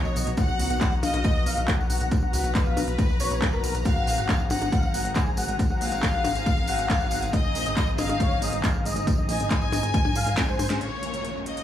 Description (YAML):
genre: uplifting trance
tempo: 138 BPM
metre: 4/4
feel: straight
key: unclear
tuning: A4 = 440 Hz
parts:
  - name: clear chamber violin section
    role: second line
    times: 0.0-11.6 s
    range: B4 to Ab5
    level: -31 LUFS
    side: left 3 dB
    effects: tape echo
  - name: lush unison pad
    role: sustained chords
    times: 0.0-11.6 s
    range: Db3 to A#5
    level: -34 LUFS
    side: equal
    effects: chorus, sidechain pumping
  - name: plucky analog bass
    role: bass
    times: 0.0-11.6 s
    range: F#1 to Ab2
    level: -30 LUFS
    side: equal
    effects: sidechain pumping
  - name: tambourine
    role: percussion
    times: 0.0-10.8 s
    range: none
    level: -38 LUFS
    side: right 2 dB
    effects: none
  - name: dense compressed supersaw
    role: melody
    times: 0.1-10.7 s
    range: A#4 to Ab5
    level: -32 LUFS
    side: equal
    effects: cassette tape, sidechain pumping, low-pass filter, tape echo
  - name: techno drum kit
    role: drums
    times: 0.2-11.6 s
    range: handclaps, hi-hat, percussion blips, snare drum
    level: -31 LUFS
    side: left 2 dB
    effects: none
  - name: electronic kick drum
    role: drums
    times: 0.4-10.5 s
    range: none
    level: -24 LUFS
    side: equal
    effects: none
  - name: downlifter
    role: sound effects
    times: 10.8-11.6 s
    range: none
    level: -35 LUFS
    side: left 1 dB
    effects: none
room: light reverb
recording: small room ambience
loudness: -22 LUFS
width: side -11 dB against mid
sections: 0.0-10.8 A section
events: drum fill 10.4-10.8; band accent 10.7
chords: 0.0 Bmaj7; 3.9 Abadd9; 10.8 Bbm